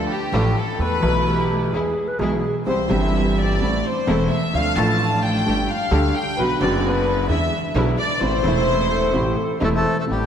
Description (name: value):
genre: tango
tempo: 129 BPM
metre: 4/4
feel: rubato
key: A minor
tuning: A4 = 439 Hz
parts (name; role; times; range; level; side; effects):
- warm chamber violin section; second line; 0.0-9.6 s; G4 to A5; -23 LUFS; left 2 dB; none
- warm concert grand piano; accompaniment; 0.0-10.3 s; E1 to A4; -22 LUFS; equal; none
- dark studio string section; stabs; 0.0-10.3 s; G3 to G4; -28 LUFS; right 2 dB; none
- upright bass; bass; 0.0-10.3 s; E1 to E2; -25 LUFS; right 1 dB; none
- mellow hollow silver concert flute; second line; 1.2-2.5, 8.7-10.1 s; E4 to C5; -28 LUFS; right 1 dB; none
- bandoneon; melody; 9.6-10.3 s; G3 to A4; -22 LUFS; equal; none
room: wet concert hall reverb, RT60 2.5 s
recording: none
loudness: -18 LUFS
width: side -8 dB against mid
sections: 0.0-10.1 A section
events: violin section solo 0.0-10.1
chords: 0.0 Dm; 0.8 Esus4; 1.7 E; 2.7 C; 3.6 Am; 4.5 Dm; 5.5 Gsus2; 6.4 Bm; 7.3 E7; 8.2 Am